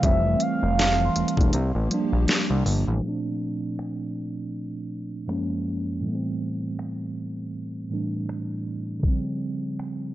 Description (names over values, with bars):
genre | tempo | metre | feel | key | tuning
contemporary R&B | 80 BPM | 4/4 | swing 58% on 16ths | unclear | A4 = 443 Hz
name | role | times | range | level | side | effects
mellow horn-like synth lead | melody | 0.0-1.9 s | E5 to F5 | -26 LUFS | right 1 dB | chorus
mellow tine electric piano | accompaniment | 0.0-10.1 s | Gb2 to D4 | -28 LUFS | right 1 dB | slow stereo tremolo
hollow soft pad | sustained chords | 0.0-3.0 s | E3 to G4 | -33 LUFS | left 1 dB | ensemble chorus, sidechain pumping
fat analog bass | bass | 0.0-3.0 s | E1 to C2 | -23 LUFS | equal | transformer saturation
smooth R&B drum kit | drums | 0.0-10.0 s | finger snaps, hi-hat, kick drum, snare drum | -24 LUFS | equal | none
worn celesta | texture | 0.0-2.1 s | A5 to E6 | -39 LUFS | left 1 dB | analog delay
room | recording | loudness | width
little or no reverb | dry, gritty hardware recording, low-pass filter, nothing above 7.6 kHz | -24 LUFS | side -14 dB against mid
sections
0.0-3.0 A section; 3.0-10.1 B section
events
kick muted 1.5-3.0; filter sweep 3.0-10.1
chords
0.0 Fmaj7; 1.5 C7sus4; 3.0 Bbmaj7; 5.3 Gbmaj7; 6.0 Am7; 9.0 Dbmaj7#11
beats
| 0.03 0.78 1.53 2.28 | 3.03 3.78 4.53 5.28 | 6.03 6.78 7.53 8.28 | 9.03 9.78